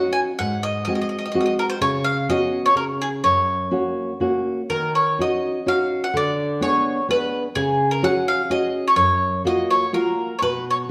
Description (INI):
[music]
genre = italian folk, Italian serenade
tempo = 126 BPM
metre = 3/4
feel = rubato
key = F# major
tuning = A4 = 439 Hz
[part]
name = bowl-back mandolin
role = melody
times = 0.0-10.8 s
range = G#4 to G#5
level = -23 LUFS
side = equal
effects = none
[part]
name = nylon-string guitar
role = accompaniment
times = 0.0-10.9 s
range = F#2 to G#4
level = -24 LUFS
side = equal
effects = none
[sound]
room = wet recital hall reverb, RT60 1.3 s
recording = none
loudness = -21 LUFS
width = mono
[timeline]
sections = 0.0-4.7 A section; 4.7-10.9 B section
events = none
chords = 0.4 G#7; 1.8 C#7sus4; 2.8 N.C.; 3.2 F#; 4.7 D#m7; 6.2 Bm6/D; 7.6 C#sus4; 9.0 F#maj7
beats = | 0.41 0.89 1.36 | 1.83 2.30 2.77 | 3.25 3.72 4.21 | 4.71 5.19 5.67 | 6.15 6.63 7.10 | 7.57 8.03 8.51 | 8.98 9.45 9.94 | 10.42 10.90